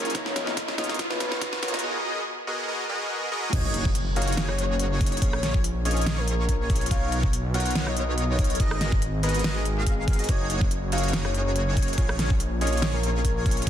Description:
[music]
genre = future bass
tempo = 142 BPM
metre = 4/4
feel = swing 54% on 16ths, half-time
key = F# major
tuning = A4 = 439 Hz
[part]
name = soft octave-layered synth lead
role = melody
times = 0.0-13.7 s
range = G#4 to F#5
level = -33 LUFS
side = left 2 dB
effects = chorus, sidechain pumping, ping-pong delay
[part]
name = soft round pluck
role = accompaniment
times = 0.0-1.8 s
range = A#2 to C#5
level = -39 LUFS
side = equal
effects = lush chorus, sidechain pumping, tape echo
[part]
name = muted studio string section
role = sustained chords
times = 0.0-1.8 s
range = C#3 to E#4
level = -41 LUFS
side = left 4 dB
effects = none
[part]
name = supersaw chords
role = riff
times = 0.0-13.7 s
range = A#3 to E#5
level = -31 LUFS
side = equal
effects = vintage 12-bit sampler grit, sidechain pumping
[part]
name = wide detuned saw bass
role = bass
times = 0.0-13.7 s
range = F#1 to B1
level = -28 LUFS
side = equal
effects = chorus, sidechain pumping, high-pass filter
[part]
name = riser and impact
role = sound effects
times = 0.0-5.2 s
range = none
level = -34 LUFS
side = equal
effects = none
[part]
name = electronic kick drum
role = drums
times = 0.1-13.7 s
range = none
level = -24 LUFS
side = equal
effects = none
[part]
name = pop drum kit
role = drums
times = 0.1-13.7 s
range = crash cymbal, hi-hat, rim click, snare drum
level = -31 LUFS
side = right 1 dB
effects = high-pass filter on hats, soft clipping on snare, high-pass filter on snare, high-pass filter on cymbals
[part]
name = airy dreamy lead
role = arpeggios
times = 3.5-13.7 s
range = C#5 to E#5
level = -34 LUFS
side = equal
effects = chorus, sidechain pumping, tape echo
[sound]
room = light reverb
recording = dense, heavily limited modern master, high-pass filter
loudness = -23 LUFS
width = side -10 dB against mid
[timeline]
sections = 0.0-3.5 A section; 3.5-13.7 B section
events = build-up 0.0-3.5; drum fill 0.0-1.8; riser 0.0-1.8; drop 3.5-13.7; impact 3.5-5.2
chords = 0.1 Bmaj9#11; 1.8 G#m9; 3.5 F#69; 5.2 A#m7; 6.9 Bmaj9#11; 8.6 G#m9; 10.3 F#69; 12.0 A#m7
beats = | 0.15 0.57 0.99 1.42 | 1.84 2.26 2.68 3.11 | 3.53 3.95 4.37 4.80 | 5.22 5.64 6.06 6.49 | 6.91 7.33 7.75 8.18 | 8.60 9.02 9.44 9.87 | 10.29 10.71 11.13 11.56 | 11.98 12.40 12.82 13.25 | 13.67

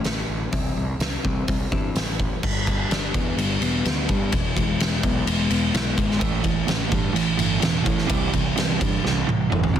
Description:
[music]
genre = quiet-loud alternative rock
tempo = 127 BPM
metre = 4/4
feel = straight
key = G major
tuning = A4 = 440 Hz
[part]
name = clean electric guitar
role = arpeggios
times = 0.0-6.2 s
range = G2 to E4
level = -26 LUFS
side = left 4 dB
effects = analog chorus
[part]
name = oversized low-tuned drum kit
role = drums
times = 0.0-9.8 s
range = crash cymbal, hi-hat, kick drum, ride cymbal, snare drum, toms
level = -23 LUFS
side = equal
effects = soft clipping on kick
[part]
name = fuzz picked electric bass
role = bass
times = 0.1-9.8 s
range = E1 to C3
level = -27 LUFS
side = equal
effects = overdrive
[part]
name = overdriven electric guitar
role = riff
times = 6.2-9.8 s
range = A2 to A3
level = -24 LUFS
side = right 10 dB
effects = none
[sound]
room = moderate large studio reverb, RT60 1.1 s, small room ambience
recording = dense, heavily limited modern master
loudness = -20 LUFS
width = side -9 dB against mid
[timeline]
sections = 0.0-2.4 A section; 2.4-9.8 B section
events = drum fill 9.0-9.8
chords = 0.0 A; 0.5 C; 2.4 G; 4.3 E; 6.2 A5; 8.1 C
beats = 0.05 | 0.53 1.00 1.48 1.96 | 2.43 2.90 3.38 3.85 | 4.33 4.80 5.27 5.74 | 6.22 6.69 7.16 7.63 | 8.10 8.57 9.04 9.51

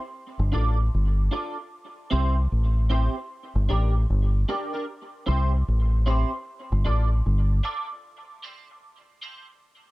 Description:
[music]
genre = dub reggae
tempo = 76 BPM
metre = 4/4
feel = swing 62% on 16ths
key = unclear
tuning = A4 = 442 Hz
[part]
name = deep dub fingered electric bass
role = bass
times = 0.4-7.6 s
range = G1 to C2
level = -21 LUFS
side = equal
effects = none
[part]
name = clean electric guitar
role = accompaniment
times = 0.5-9.5 s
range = C4 to D5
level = -31 LUFS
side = right 2 dB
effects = analog chorus, high-pass filter, dub echo
[sound]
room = little or no reverb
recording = dark, warm production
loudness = -22 LUFS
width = side -20 dB against mid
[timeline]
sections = 0.0-9.9 A section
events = filter sweep on clean electric guitar 4.9-9.9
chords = 0.1 Dm; 1.7 C; 3.3 Gm; 4.9 C; 6.5 Dm; 8.0 C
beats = 0.14 0.93 | 1.72 2.51 3.30 4.09 | 4.88 5.67 6.46 7.25 | 8.04 8.83

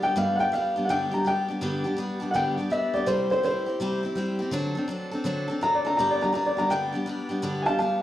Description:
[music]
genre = rock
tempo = 165 BPM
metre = 4/4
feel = swing 64% on 8ths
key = G major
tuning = A4 = 436 Hz
[part]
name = dark upright piano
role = melody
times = 0.0-8.0 s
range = C5 to Bb5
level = -25 LUFS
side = equal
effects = plate reverb, slapback echo
[part]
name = picked steel-string acoustic guitar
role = accompaniment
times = 0.0-8.0 s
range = G2 to A4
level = -27 LUFS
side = equal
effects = slapback echo
[sound]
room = moderate club reverb, RT60 0.6 s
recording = live gig heard through the venue's PA, club reverb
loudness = -24 LUFS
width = side -13 dB against mid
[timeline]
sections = 0.0-7.4 A section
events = upright piano solo 0.0-8.0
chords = 0.0 G; 3.1 C; 4.5 D7; 6.0 G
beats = | 0.17 0.53 0.90 1.26 | 1.62 1.98 2.35 2.71 | 3.07 3.44 3.80 4.16 | 4.53 4.89 5.25 5.62 | 5.98 6.34 6.71 7.07 | 7.43 7.79

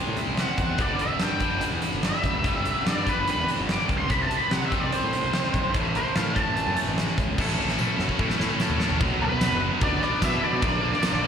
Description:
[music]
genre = classic rock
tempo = 146 BPM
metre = 4/4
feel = straight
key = unclear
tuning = A4 = 443 Hz
[part]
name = biting overdriven guitar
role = riff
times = 0.0-11.3 s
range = G2 to A4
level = -27 LUFS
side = equal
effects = slapback echo
[part]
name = fuzz picked electric bass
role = bass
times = 0.1-11.3 s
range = F#1 to C3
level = -30 LUFS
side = equal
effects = overdrive
[part]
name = huge arena drum kit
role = drums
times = 0.2-11.2 s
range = crash cymbal, hi-hat, kick drum, ride cymbal, snare drum, toms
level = -27 LUFS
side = equal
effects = none
[part]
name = octave-fuzz lead guitar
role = melody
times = 0.4-11.3 s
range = B4 to D6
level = -27 LUFS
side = equal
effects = wah, distortion, slapback echo
[part]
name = tambourine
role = percussion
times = 7.8-11.1 s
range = none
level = -43 LUFS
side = left 5 dB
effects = none
[part]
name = lightly driven lead guitar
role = second line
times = 9.2-11.3 s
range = B3 to E4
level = -33 LUFS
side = right 4 dB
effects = slapback echo
[sound]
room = light reverb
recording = live gig heard through the venue's PA, recital hall reverb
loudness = -22 LUFS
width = side -7 dB against mid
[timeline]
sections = 0.0-7.4 A section; 7.4-9.0 B section; 9.0-11.3 C section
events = lead electric guitar solo 0.0-7.4; drum fill 7.4-9.0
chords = 0.0 C; 0.8 G5; 4.1 C5; 5.7 A5; 7.4 A; 9.0 Bm; 10.6 Bb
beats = 0.38 | 0.80 1.21 1.62 2.04 | 2.45 2.87 3.28 3.69 | 4.10 4.51 4.93 5.34 | 5.75 6.16 6.57 6.97 | 7.38 7.79 8.20 8.60 | 9.01 9.41 9.82 10.22 | 10.63 11.03

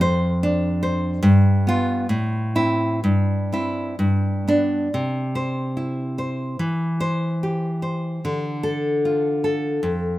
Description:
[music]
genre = romantic piece for solo classical guitar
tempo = 61-76 BPM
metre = 2/4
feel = rubato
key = C major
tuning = A4 = 440 Hz
[part]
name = nylon-string guitar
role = solo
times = 0.0-10.2 s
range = F2 to C5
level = -19 LUFS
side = equal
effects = none
[sound]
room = studio reverb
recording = rough home demo mix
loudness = -19 LUFS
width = side -16 dB against mid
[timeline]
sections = 0.0-4.9 A section; 4.9-10.2 B section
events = none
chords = 0.0 Dm7/F; 1.2 G7; 2.1 Am; 3.0 C/G; 4.0 G; 4.9 C; 6.6 C/E; 8.2 Dm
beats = 0.42 | 1.24 2.09 | 3.03 3.97 | 4.89 5.74 | 6.57 7.39 | 8.22 9.02 | 9.82

